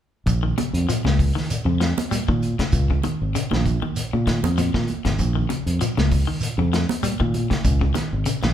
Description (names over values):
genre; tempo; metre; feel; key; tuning
afrobeat; 98 BPM; 4/4; swing 55% on 16ths; Bb dorian; A4 = 439 Hz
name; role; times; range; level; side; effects
fingered electric bass; bass; 0.3-8.5 s; Ab1 to Bb2; -22 LUFS; equal; none
vintage drum kit; drums; 0.3-8.5 s; hi-hat, kick drum, snare drum; -26 LUFS; equal; none
congas; percussion; 0.3-8.5 s; none; -29 LUFS; right 5 dB; none
shekere; percussion; 0.3-8.4 s; none; -30 LUFS; equal; none
electric guitar at the edge of break-up; arpeggios; 0.4-8.5 s; Db3 to G3; -27 LUFS; left 4 dB; none
room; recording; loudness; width
moderate large studio reverb, RT60 1.3 s; band playing live in one room; -19 LUFS; side -10 dB against mid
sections
0.3-8.5 A section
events
none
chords
0.3 Bbm